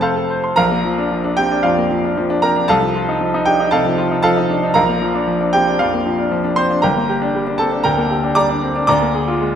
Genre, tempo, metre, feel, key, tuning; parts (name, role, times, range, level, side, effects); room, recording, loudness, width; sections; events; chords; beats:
classical, virtuoso piano study; 116 BPM; 4/4; rubato; Bb major; A4 = 440 Hz
clear grand piano; solo; 0.0-9.6 s; G1 to D6; -14 LUFS; equal
moderate scoring stage reverb, RT60 1.7 s; -14 LUFS; side -8 dB against mid
0.6-9.6 A section
0.0 F; 0.6 Bb; 2.7 F7/C; 4.8 Bb; 6.8 Gm; 8.9 Bb7/D
0.03 | 0.58 1.12 1.64 2.17 | 2.69 3.21 3.73 4.24 | 4.76 5.28 5.80 6.31 | 6.83 7.34 7.85 8.37 | 8.89 9.41